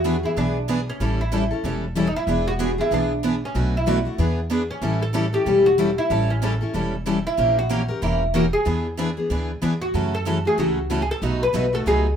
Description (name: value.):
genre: acoustic string swing (jazz manouche).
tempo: 188 BPM.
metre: 4/4.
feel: swing 60% on 8ths.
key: E mixolydian.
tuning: A4 = 441 Hz.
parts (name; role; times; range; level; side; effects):
oud; melody; 0.0-12.2 s; C#4 to B4; -23 LUFS; equal; none.
picked steel-string acoustic guitar; accompaniment; 0.0-12.1 s; B2 to A#4; -25 LUFS; left 3 dB; none.
picked steel-string acoustic guitar; accompaniment; 0.0-12.1 s; B2 to B4; -28 LUFS; right 6 dB; none.
upright bass; bass; 0.0-12.1 s; E1 to F#2; -25 LUFS; equal; none.
room: light reverb.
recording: minimal, uncompressed stereo recording.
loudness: -19 LUFS.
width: side -8 dB against mid.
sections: 0.0-12.2 A section.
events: none.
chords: 0.0 E7; 1.0 A7; 2.3 E7; 3.6 Bm7; 4.2 E7; 4.8 A7; 7.4 A#dim7; 8.7 E7; 9.9 F#m7; 11.2 B7.